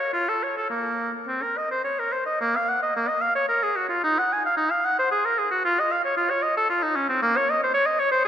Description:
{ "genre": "classical, baroque-style fantasia for unaccompanied oboe", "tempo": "104-118 BPM", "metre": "3/4", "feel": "rubato", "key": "Bb minor", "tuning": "A4 = 439 Hz", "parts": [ { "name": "warm oboe", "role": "solo", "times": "0.0-8.3 s", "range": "Bb3 to Ab5", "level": "-21 LUFS", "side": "equal", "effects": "none" } ], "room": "wet church reverb, RT60 3.2 s", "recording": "none", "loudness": "-21 LUFS", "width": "side -9 dB against mid", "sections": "0.0-2.4 A section; 2.4-8.3 B section", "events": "none", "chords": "none" }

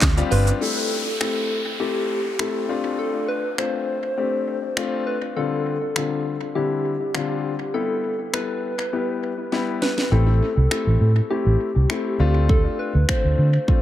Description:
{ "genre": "dance-pop", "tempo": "101 BPM", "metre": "4/4", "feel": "straight", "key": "A minor", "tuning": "A4 = 440 Hz", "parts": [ { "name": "mellow French horn section", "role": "sustained chords", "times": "0.0-0.6 s", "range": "C3 to G4", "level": "-44 LUFS", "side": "right 2 dB", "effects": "none" }, { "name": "direct-recorded clean electric guitar", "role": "riff", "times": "0.0-0.5 s", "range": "F4 to C5", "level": "-36 LUFS", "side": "right 6 dB", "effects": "none" }, { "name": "vintage muted fingered electric bass", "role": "bass", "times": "0.0-0.5, 10.1-13.6 s", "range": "G1 to D3", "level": "-17 LUFS", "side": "equal", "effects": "sidechain pumping" }, { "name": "house drum kit", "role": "drums", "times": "0.0-13.8 s", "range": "finger snaps, handclaps, hi-hat, kick drum, shaker, snare drum", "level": "-23 LUFS", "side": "equal", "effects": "analog delay" }, { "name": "warm grand piano", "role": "accompaniment", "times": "0.2-13.8 s", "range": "D3 to A4", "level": "-26 LUFS", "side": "left 6 dB", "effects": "sidechain pumping, analog delay" }, { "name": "soft struck synth lead", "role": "melody", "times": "0.3-13.8 s", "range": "G4 to C5", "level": "-26 LUFS", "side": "equal", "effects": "chorus, tremolo, analog delay" }, { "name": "downlifter", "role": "sound effects", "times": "0.6-5.4 s", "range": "none", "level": "-31 LUFS", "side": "equal", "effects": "none" } ], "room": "light reverb, digital ambience", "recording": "echo-heavy mix", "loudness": "-20 LUFS", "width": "side -12 dB against mid", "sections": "0.6-13.8 A section", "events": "drum fill 9.5-10.1", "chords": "0.0 G7sus4; 0.6 Am7; 2.7 Dm7; 5.4 G7sus4/D; 7.7 Em; 10.1 Am7; 12.2 Dm7" }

